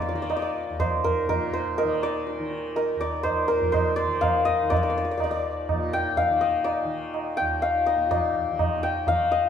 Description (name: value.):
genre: indian classical, Hindustani.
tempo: 123 BPM.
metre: 5/4.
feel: straight.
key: Eb raga yaman.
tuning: A4 = 440 Hz.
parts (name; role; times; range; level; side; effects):
santur; melody; 0.0-9.5 s; Bb4 to G5; -24 LUFS; left 2 dB; none.
tanpura; drone; 0.0-9.5 s; Eb2 to Eb3; -34 LUFS; equal; none.
tabla; percussion; 0.3-9.5 s; none; -28 LUFS; right 2 dB; none.
room: wet large studio reverb, RT60 1.3 s.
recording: band playing live in one room.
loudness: -22 LUFS.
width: side -8 dB against mid.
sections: 0.0-9.5 A section.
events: none.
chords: none.